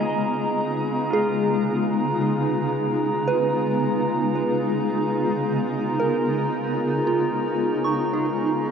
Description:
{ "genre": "ambient", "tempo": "56 BPM", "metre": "3/4", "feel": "straight", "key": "Db mixolydian", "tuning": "A4 = 441 Hz", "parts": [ { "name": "pedal steel guitar", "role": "melody", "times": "0.0-2.1 s", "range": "F4 to Ab4", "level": "-39 LUFS", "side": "equal", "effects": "ping-pong delay" }, { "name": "granular cloud pad", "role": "sustained chords", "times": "0.0-8.7 s", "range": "Db3 to Bb5", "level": "-23 LUFS", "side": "equal", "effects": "built-in reverb" }, { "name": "soft synth bell", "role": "arpeggios", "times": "0.0-8.7 s", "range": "F4 to Db6", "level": "-28 LUFS", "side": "right 2 dB", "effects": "chorus, phaser, ping-pong delay" }, { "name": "glass harmonica", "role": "texture", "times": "0.0-8.7 s", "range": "Ab4 to Bb5", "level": "-28 LUFS", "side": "equal", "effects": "none" } ], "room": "wet huge ambient reverb, RT60 8.5 s", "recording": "worn, warbling old tape, cassette tape, warbly pitch drift", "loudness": "-20 LUFS", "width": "side -7 dB against mid", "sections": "0.0-8.7 A section", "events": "fade-in on pedal steel guitar 0.0-8.7", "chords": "0.0 Db13" }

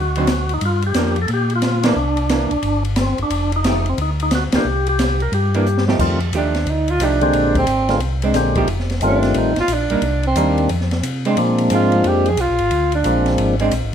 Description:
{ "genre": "soul jazz organ trio", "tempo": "179 BPM", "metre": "4/4", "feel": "swing 64% on 8ths", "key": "unclear", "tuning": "A4 = 442 Hz", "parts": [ { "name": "percussive tonewheel organ", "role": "melody", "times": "0.0-13.6 s", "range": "D3 to Bb4", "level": "-20 LUFS", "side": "left 1 dB", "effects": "slow rotary speaker, plate reverb" }, { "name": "mellow tonewheel organ", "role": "bass", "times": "0.0-13.9 s", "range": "F1 to C3", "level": "-20 LUFS", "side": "equal", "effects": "chorus vibrato, slow rotary speaker" }, { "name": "archtop guitar, miked and amplified", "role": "accompaniment", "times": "0.2-13.7 s", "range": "D3 to G4", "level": "-22 LUFS", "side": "right 2 dB", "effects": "none" }, { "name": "open jazz drum kit", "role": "drums", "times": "0.2-13.8 s", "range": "crash cymbal, hi-hat, kick drum, ride cymbal, snare drum", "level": "-24 LUFS", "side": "equal", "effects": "none" }, { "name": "breathy tenor saxophone", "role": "melody", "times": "6.4-13.4 s", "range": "C4 to Ab4", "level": "-19 LUFS", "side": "right 2 dB", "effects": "plate reverb" } ], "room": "moderate studio reverb, RT60 0.8 s", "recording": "none", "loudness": "-15 LUFS", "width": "side -8 dB against mid", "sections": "0.0-6.0 A section; 6.0-13.9 B section", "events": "band accent 1.8, 4.5; drum fill 5.7-6.0; tenor saxophone solo 6.0-13.9", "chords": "0.0 D7b9; 0.6 Gm7; 2.0 C9; 3.3 F9; 4.0 Daug; 4.7 C5; 6.0 F9; 7.3 Bb9; 8.7 F9; 10.0 Cm7; 10.7 F5; 11.4 Bb9" }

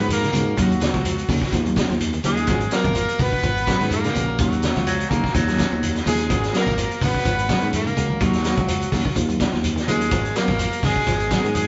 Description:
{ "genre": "afrobeat", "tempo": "126 BPM", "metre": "4/4", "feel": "swing 54% on 16ths", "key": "G# dorian", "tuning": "A4 = 443 Hz", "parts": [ { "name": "warm horn section", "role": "melody", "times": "0.0-11.7 s", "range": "F#4 to B4", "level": "-29 LUFS", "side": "equal", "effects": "none" }, { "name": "edgy tenor saxophone", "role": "second line", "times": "0.0-11.7 s", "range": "F#3 to B3", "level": "-30 LUFS", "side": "equal", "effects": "none" }, { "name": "electric guitar at the edge of break-up", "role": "arpeggios", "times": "0.0-11.6 s", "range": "C#3 to F#3", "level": "-30 LUFS", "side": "equal", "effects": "spring reverb" }, { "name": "semi-hollow electric guitar", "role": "stabs", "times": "0.0-11.6 s", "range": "F#3 to A#4", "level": "-34 LUFS", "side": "equal", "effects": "none" }, { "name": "fingered electric bass", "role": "bass", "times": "0.0-11.7 s", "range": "G#1 to G#2", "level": "-27 LUFS", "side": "equal", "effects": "none" }, { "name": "vintage drum kit", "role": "drums", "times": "0.1-11.7 s", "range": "hi-hat, kick drum, snare drum", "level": "-27 LUFS", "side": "equal", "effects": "none" }, { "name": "congas", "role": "percussion", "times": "0.1-11.7 s", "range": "none", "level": "-31 LUFS", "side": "equal", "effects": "none" }, { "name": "shekere", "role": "percussion", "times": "0.1-11.7 s", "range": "none", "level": "-35 LUFS", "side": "equal", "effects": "none" }, { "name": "raspy baritone saxophone", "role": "second line", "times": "4.9-6.0 s", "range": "F#3 to A#3", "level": "-28 LUFS", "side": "equal", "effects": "none" } ], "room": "moderate studio reverb, RT60 0.9 s", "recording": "band playing live in one room, nothing above 7.7 kHz", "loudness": "-21 LUFS", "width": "mono", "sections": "0.0-11.7 A section", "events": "none", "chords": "0.0 G#m11; 0.6 D#m9; 2.5 G#m11; 4.4 D#m9; 6.3 G#m11; 8.2 D#m9; 10.1 G#m11" }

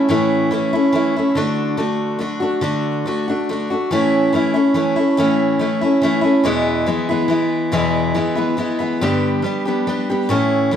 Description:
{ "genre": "rock", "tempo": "141 BPM", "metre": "3/4", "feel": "straight", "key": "A major", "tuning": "A4 = 441 Hz", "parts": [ { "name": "picked steel-string acoustic guitar", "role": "solo", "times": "0.0-10.8 s", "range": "E2 to G4", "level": "-16 LUFS", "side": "equal", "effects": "none" } ], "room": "moderate large studio reverb, RT60 0.9 s", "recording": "band playing live in one room", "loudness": "-16 LUFS", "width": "side -9 dB against mid", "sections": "0.0-9.0 A section; 9.0-10.8 B section", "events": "none", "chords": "0.0 A; 1.4 D; 3.9 A; 6.5 E; 9.0 G" }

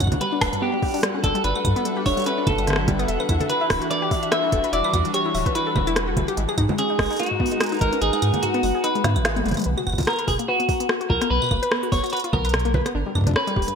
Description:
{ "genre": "IDM", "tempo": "146 BPM", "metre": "4/4", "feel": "swing 56% on 16ths", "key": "unclear", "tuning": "A4 = 438 Hz", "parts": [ { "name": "hollow soft pad", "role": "sustained chords", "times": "0.0-9.7 s", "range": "E3 to A#5", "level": "-29 LUFS", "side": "equal", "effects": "chorus" }, { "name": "warbly dusty pluck", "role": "arpeggios", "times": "0.0-13.7 s", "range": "G2 to E5", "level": "-27 LUFS", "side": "left 3 dB", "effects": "chorus, cassette tape, ping-pong delay" }, { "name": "warm sub bass", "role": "bass", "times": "0.0-13.7 s", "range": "D1 to G#2", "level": "-25 LUFS", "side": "equal", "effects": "none" }, { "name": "electronic kick drum", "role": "drums", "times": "0.0-13.7 s", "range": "none", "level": "-25 LUFS", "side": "equal", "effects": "overdrive" }, { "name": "organic electronic drum kit", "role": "drums", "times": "0.0-13.8 s", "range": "claves, congas, hi-hat, rim click, snare drum, toms", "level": "-26 LUFS", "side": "right 1 dB", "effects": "overdrive, gated reverb" }, { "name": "flickering grainy texture", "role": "texture", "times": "0.0-9.7 s", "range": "F#4 to F#5", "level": "-35 LUFS", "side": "equal", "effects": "built-in reverb" }, { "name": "clean electric guitar", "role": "melody", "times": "0.2-13.7 s", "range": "F#4 to E5", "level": "-24 LUFS", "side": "equal", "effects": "lush chorus, digital delay" } ], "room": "moderate lush hall reverb, RT60 1.6 s", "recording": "bright 1980s-style digital production", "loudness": "-19 LUFS", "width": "side -6 dB against mid", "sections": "0.0-9.7 A section; 9.7-13.8 A section", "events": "kick drops out 8.0-9.7; drum fill 9.0-9.7", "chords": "0.0 G6; 3.1 Em7; 6.4 G#m7; 9.7 B5; 12.9 G" }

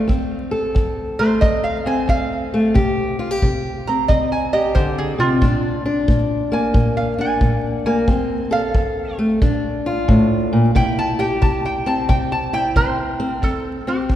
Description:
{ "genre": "acoustic country blues, solo or duo", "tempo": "90 BPM", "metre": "4/4", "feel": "swing 66% on 8ths", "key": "F major", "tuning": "A4 = 438 Hz", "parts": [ { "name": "lap resonator guitar", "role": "melody", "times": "0.0-14.2 s", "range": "F4 to Bb5", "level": "-22 LUFS", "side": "right 2 dB", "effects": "none" }, { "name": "fingerpicked old ladder-braced acoustic guitar", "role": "accompaniment", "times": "0.0-14.2 s", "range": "F2 to A4", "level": "-19 LUFS", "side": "left 1 dB", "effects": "none" }, { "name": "kick drum", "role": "drums", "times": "0.1-14.2 s", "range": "none", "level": "-21 LUFS", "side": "equal", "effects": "none" } ], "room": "wet church reverb, RT60 3.0 s", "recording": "recorded in a church or concert hall, vinyl crackle", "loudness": "-16 LUFS", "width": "side -12 dB against mid", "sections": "0.0-13.4 A section", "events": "resonator guitar played with a steel bar solo 0.0-13.4", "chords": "0.0 F; 2.8 C5; 5.4 Bb; 8.1 F; 9.4 Bb; 10.8 C; 13.4 F" }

